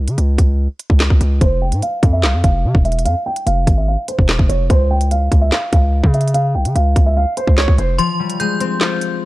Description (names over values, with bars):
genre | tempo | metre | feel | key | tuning
hip hop, drill | 146 BPM | 4/4 | half-time | unclear | A4 = 438 Hz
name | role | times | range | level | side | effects
distorted 808-style bass | bass | 0.0-8.0 s | E1 to Db3 | -15 LUFS | equal | distortion
drill drum kit | drums | 0.1-9.1 s | handclaps, hi-hat, kick drum, snare drum | -14 LUFS | equal | none
dark baby grand piano | melody | 1.4-7.9 s | C5 to G5 | -20 LUFS | right 2 dB | low-pass filter
metallic FM bell | second line | 8.0-9.2 s | C6 to G6 | -21 LUFS | left 2 dB | chorus, phaser, tape echo
concert harp | accompaniment | 8.0-9.3 s | F3 to F4 | -18 LUFS | left 6 dB | low-pass filter
room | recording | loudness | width
digital ambience | dark, warm production | -13 LUFS | side -17 dB against mid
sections
0.0-9.3 A section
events
break 0.0-1.4, 8.0-9.3; filter sweep 0.0-8.0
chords
0.0 N.C.; 4.7 Db; 8.0 Fmadd9